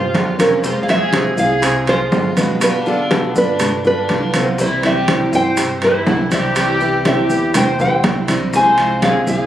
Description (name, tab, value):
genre	latin, Cuban son and guajira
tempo	122 BPM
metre	4/4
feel	straight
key	F harmonic minor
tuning	A4 = 440 Hz
part	nylon-string guitar	melody	0.0-9.5 s	A4 to Ab5	-18 LUFS	equal	plate reverb
part	dark studio violin section	second line	0.0-9.5 s	C4 to C5	-22 LUFS	equal	none
part	warm baby grand piano	arpeggios	0.0-9.4 s	B2 to C5	-23 LUFS	right 1 dB	none
part	upright bass	bass	0.0-9.5 s	G1 to G2	-25 LUFS	equal	none
part	picked steel-string acoustic guitar	accompaniment	0.1-9.5 s	C3 to F4	-21 LUFS	equal	none
part	bongos	percussion	0.1-9.5 s	none	-27 LUFS	left 3 dB	none
part	congas	percussion	0.1-9.5 s	none	-21 LUFS	equal	none
part	maracas	percussion	0.1-9.5 s	none	-32 LUFS	equal	none
part	timbales	percussion	0.2-9.3 s	none	-23 LUFS	right 2 dB	none
room	moderate studio reverb, RT60 0.7 s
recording	recorded on a phone in the room, club reverb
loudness	-13 LUFS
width	side -11 dB against mid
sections	0.0-9.5 A section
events	none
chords	0.0 Csus4; 0.6 Fm; 2.6 G7; 4.6 C; 8.5 Fm/C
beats	0.15 | 0.64 1.14 1.63 2.12 | 2.62 3.11 3.60 4.10 | 4.59 5.08 5.58 6.07 | 6.56 7.05 7.55 8.04 | 8.53 9.03